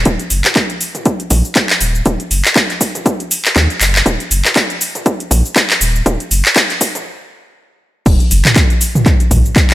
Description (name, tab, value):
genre	afro house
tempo	120 BPM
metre	4/4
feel	swing 57% on 16ths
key	Eb minor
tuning	A4 = 440 Hz
part	warm sub bass	bass	0.0-9.4 s	Eb1 to Eb2	-14 LUFS	equal	sidechain pumping
part	electronic kick drum	drums	0.1-9.7 s	none	-14 LUFS	equal	overdrive, high-pass filter on kick, high-pass filter on room
part	house drum kit	drums	0.1-9.7 s	crash cymbal, handclaps, hi-hat, shaker, toms	-13 LUFS	equal	overdrive, high-pass filter on snare, high-pass filter on perc, high-pass filter on hats, high-pass filter on toms, high-pass filter on cymbals, high-pass filter on room
room	light reverb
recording	none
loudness	-11 LUFS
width	side -16 dB against mid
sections	0.1-8.1 A section; 8.1-9.7 B section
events	build-up 0.1-8.1; stop 7.1-8.1; drop 8.1-9.7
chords	none